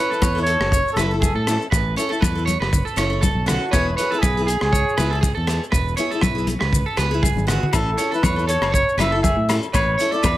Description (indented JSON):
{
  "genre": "highlife guitar band",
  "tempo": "120 BPM",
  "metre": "4/4",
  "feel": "swing 55% on 16ths",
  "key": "A major",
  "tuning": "A4 = 440 Hz",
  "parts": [
    { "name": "breathy trumpet", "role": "melody", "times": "0.0-10.4 s", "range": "G#4 to E5", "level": "-22 LUFS", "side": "equal", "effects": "plate reverb" },
    { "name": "picked steel-string acoustic guitar", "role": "accompaniment", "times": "0.0-10.3 s", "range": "B3 to A4", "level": "-27 LUFS", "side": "left 4 dB", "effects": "none" },
    { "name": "electric guitar at the edge of break-up", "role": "arpeggios", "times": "0.0-10.4 s", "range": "F#4 to C#5", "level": "-25 LUFS", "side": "right 5 dB", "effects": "tape echo" },
    { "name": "maracas", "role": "percussion", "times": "0.1-10.4 s", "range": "none", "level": "-32 LUFS", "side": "left 9 dB", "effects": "none" },
    { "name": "fingered electric bass", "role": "bass", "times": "0.2-10.4 s", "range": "E1 to A2", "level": "-23 LUFS", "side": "equal", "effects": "none" },
    { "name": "crunchy breakbeat drum kit", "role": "drums", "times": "0.2-10.4 s", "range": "hi-hat, kick drum, rim click", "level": "-23 LUFS", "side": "equal", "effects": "none" },
    { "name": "congas", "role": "percussion", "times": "0.2-10.4 s", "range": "none", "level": "-26 LUFS", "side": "left 3 dB", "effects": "none" },
    { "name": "agogo bells", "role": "percussion", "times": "7.7-10.4 s", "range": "none", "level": "-30 LUFS", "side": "left 7 dB", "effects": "none" }
  ],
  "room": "light reverb",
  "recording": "none",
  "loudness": "-17 LUFS",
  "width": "side -15 dB against mid",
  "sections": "0.0-10.4 A section",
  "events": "drum fill 7.2-7.7",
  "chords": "0.0 A; 3.7 E; 7.7 A"
}